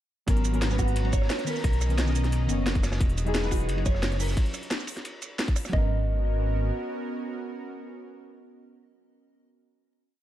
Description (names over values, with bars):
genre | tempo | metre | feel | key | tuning
liquid drum and bass | 176 BPM | 4/4 | straight | G# minor | A4 = 439 Hz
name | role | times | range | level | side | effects
deep mellow chord stab | accompaniment | 0.3-9.9 s | D#3 to C#5 | -33 LUFS | left 1 dB | wide subtle chorus, cassette tape, ping-pong delay
lush unison pad | sustained chords | 0.3-9.2 s | B3 to A#5 | -37 LUFS | right 1 dB | chorus
dark detuned saw bass | bass | 0.3-6.7 s | E1 to B1 | -26 LUFS | equal | none
crunchy breakbeat drum kit | drums | 0.3-5.7 s | hi-hat, ride cymbal, snare drum | -37 LUFS | equal | high-pass filter on cymbals, studio reverb, high-pass filter on hats, high-pass filter on snare, high-pass filter on room
drum and bass drum kit | drums | 0.3-5.7 s | hi-hat, rim click, shaker, snare drum | -32 LUFS | equal | studio reverb
electronic kick drum | drums | 0.3-5.8 s | none | -25 LUFS | equal | studio reverb
mellow electric guitar | melody | 0.8-9.9 s | F#4 to D#5 | -36 LUFS | right 2 dB | ping-pong delay
room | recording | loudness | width
small room ambience | dark, warm production | -24 LUFS | side -13 dB against mid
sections
0.3-5.7 drop; 5.7-8.5 final chord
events
drop 0.3-5.7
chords
0.3 G#m11; 1.6 Bmaj9; 3.0 Emaj9; 4.4 F#7; 5.7 G#m11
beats
| 0.28 0.62 0.96 1.30 | 1.64 1.98 2.32 2.66 | 3.00 3.35 3.69 4.03 | 4.37 4.71 5.05 5.39 | 5.73 6.07 6.41 6.75 | 7.10 7.44 7.78 8.12